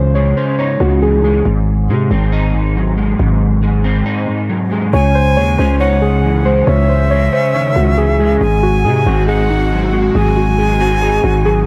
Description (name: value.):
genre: hip hop.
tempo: 138 BPM.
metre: 4/4.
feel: half-time.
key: C# harmonic minor.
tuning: A4 = 440 Hz.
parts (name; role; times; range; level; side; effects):
muted felt-like synth keys; melody; 0.0-1.4, 4.9-11.7 s; D#4 to C#5; -20 LUFS; equal; chorus.
electric guitar at the edge of break-up; accompaniment; 0.0-11.7 s; G#2 to D#4; -19 LUFS; equal; ensemble chorus.
growling 808-style bass; bass; 0.0-11.7 s; G#1 to B#2; -17 LUFS; equal; none.
bright silver concert flute; second line; 4.9-11.6 s; E5 to G#5; -22 LUFS; equal; digital delay.
airy breathy pad; sustained chords; 6.2-11.7 s; C#3 to F#4; -27 LUFS; equal; chorus.
room: little or no reverb.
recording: none.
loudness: -14 LUFS.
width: mono.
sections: 0.0-4.9 A section; 4.9-11.7 B section.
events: break 4.1-4.9.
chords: 0.0 C#madd9; 1.5 G#7; 4.9 C#madd9; 8.4 G#7.